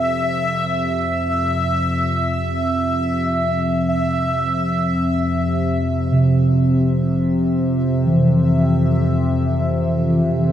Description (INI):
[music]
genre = dark ambient drone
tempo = free time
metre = none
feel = none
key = unclear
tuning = A4 = 441 Hz
[part]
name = analog drone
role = drone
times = 0.0-10.5 s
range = F2 to C3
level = -20 LUFS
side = left 1 dB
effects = chorus, phaser
[part]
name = bubbling stepped-filter texture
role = texture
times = 0.0-10.5 s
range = E5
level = -23 LUFS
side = equal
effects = chorus, built-in reverb
[part]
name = bronze singing bowl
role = arpeggios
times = 6.1-10.5 s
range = C3 to E3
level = -17 LUFS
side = right 1 dB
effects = diffuse ambient delay
[sound]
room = moderate lush hall reverb, RT60 2.4 s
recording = dreamy mix soaked in reverb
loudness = -16 LUFS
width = side -10 dB against mid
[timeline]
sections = 0.0-10.5 A section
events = fade-in on synth drone 0.0-10.5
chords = 0.0 F5